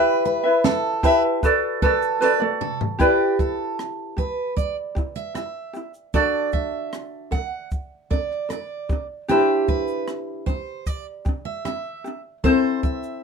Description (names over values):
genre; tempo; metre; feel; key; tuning
acoustic pop; 76 BPM; 4/4; straight; G major; A4 = 442 Hz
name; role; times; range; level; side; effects
ukulele; accompaniment; 0.0-13.2 s; C4 to E5; -21 LUFS; left 2 dB; none
picked steel-string acoustic guitar; arpeggios; 0.0-13.2 s; G4 to F#5; -25 LUFS; right 5 dB; none
compact cocktail drum kit; drums; 0.2-13.2 s; kick drum, rim click, shaker, snare drum, toms; -25 LUFS; equal; none
room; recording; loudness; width
moderate small room reverb, RT60 0.5 s; minimal, uncompressed stereo recording; -20 LUFS; side -5 dB against mid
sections
0.0-3.0 A section; 3.0-13.2 B section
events
drum fill 2.2-3.0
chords
0.0 Em; 1.4 D6; 3.0 G6; 6.1 D; 8.9 Cadd9; 12.4 Am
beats
0.64 1.42 2.21 | 3.00 3.78 4.57 5.36 | 6.14 6.93 7.72 8.50 | 9.29 10.08 10.86 11.65 | 12.44 13.22